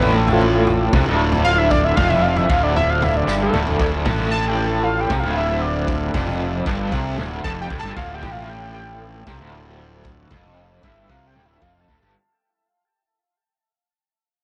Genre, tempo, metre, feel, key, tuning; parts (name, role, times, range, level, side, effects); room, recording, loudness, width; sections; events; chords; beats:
psychedelic rock; 115 BPM; 4/4; straight; D minor; A4 = 444 Hz
fat analog lead; melody; 0.0-12.1 s; F4 to A5; -24 LUFS; equal; tape echo
overdriven combo organ; sustained chords; 0.0-12.1 s; F3 to A4; -34 LUFS; equal
raw garage guitar; riff; 0.0-12.1 s; D2 to C3; -25 LUFS; equal; overdrive, tremolo
fuzz fingered electric bass; bass; 0.0-12.1 s; D1 to C2; -25 LUFS; equal; overdrive
vintage drum kit; drums; 0.0-12.0 s; kick drum, snare drum, toms; -27 LUFS; equal
congas; percussion; 0.3-3.8 s; -37 LUFS; equal
moderate spring reverb, RT60 2.5 s; -19 LUFS; mono
0.0-12.1 A section
fade-out 0.0-12.1; analog synth lead solo 0.0-12.1; drum fill 3.3-3.8
0.0 Dm
0.14 0.66 1.18 | 1.70 2.22 2.75 3.27 | 3.79 4.31 4.83 5.35 | 5.88 6.40 6.92 7.44 | 7.96 8.49 9.01 9.53 | 10.05 10.58 11.10 11.62